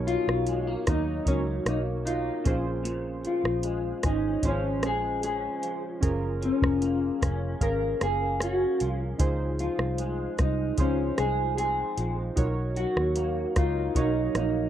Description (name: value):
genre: indie pop, bedroom pop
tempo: 76 BPM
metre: 4/4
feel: straight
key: unclear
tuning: A4 = 439 Hz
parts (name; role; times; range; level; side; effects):
- electric guitar through a small old amp; accompaniment; 0.0-14.7 s; Bb2 to Eb4; -35 LUFS; left 1 dB; ensemble chorus, vibrato effect, plate reverb
- warbly lo-fi synth keys; accompaniment; 0.0-14.7 s; Gb3 to F5; -34 LUFS; right 3 dB; chorus, plate reverb
- vintage muted fingered electric bass; bass; 0.0-14.7 s; F1 to Eb2; -30 LUFS; equal; none
- mellow electric guitar; melody; 0.1-14.7 s; Db4 to Bb4; -28 LUFS; left 1 dB; wide subtle chorus, slapback echo, plate reverb
- soft vintage rhythm box; drums; 0.1-14.5 s; hi-hat, kick drum, rim click; -27 LUFS; equal; none
room: light reverb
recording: rough home demo mix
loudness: -25 LUFS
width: side -10 dB against mid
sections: 0.0-14.7 A section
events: none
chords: 0.0 Cbmaj7; 2.5 Bbm7; 6.0 Gbmaj7; 9.2 Dbmaj7; 12.4 Cbmaj7